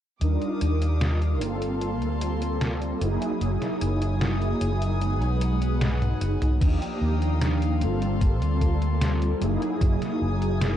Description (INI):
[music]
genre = vaporwave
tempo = 75 BPM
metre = 4/4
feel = straight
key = unclear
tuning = A4 = 440 Hz
[part]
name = mellow synth brass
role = accompaniment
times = 0.2-10.8 s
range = F3 to Bb4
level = -27 LUFS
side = equal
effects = ensemble chorus, analog delay
[part]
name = rich chamber string section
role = sustained chords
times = 0.2-10.8 s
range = Bb3 to Eb6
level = -36 LUFS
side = left 1 dB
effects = none
[part]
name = fingered electric bass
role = bass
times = 0.2-10.8 s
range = Gb1 to Eb2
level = -25 LUFS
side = equal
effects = tube saturation
[part]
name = detuned 8-bit digital drum machine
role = drums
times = 0.2-10.8 s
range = crash cymbal, hi-hat, snare drum, toms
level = -29 LUFS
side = equal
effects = studio reverb
[part]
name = electronic kick drum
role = drums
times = 6.6-10.0 s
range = none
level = -22 LUFS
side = equal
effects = studio reverb
[sound]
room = light reverb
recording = dark, warm production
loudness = -22 LUFS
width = side -11 dB against mid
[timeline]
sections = 0.2-6.6 A section; 6.6-10.8 B section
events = drum fill 5.8-6.6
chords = 0.2 Ebmaj9; 1.4 Gm11; 3.0 Gb13; 5.0 B6; 6.6 Ebmaj9; 7.8 Gm11; 9.4 Gb13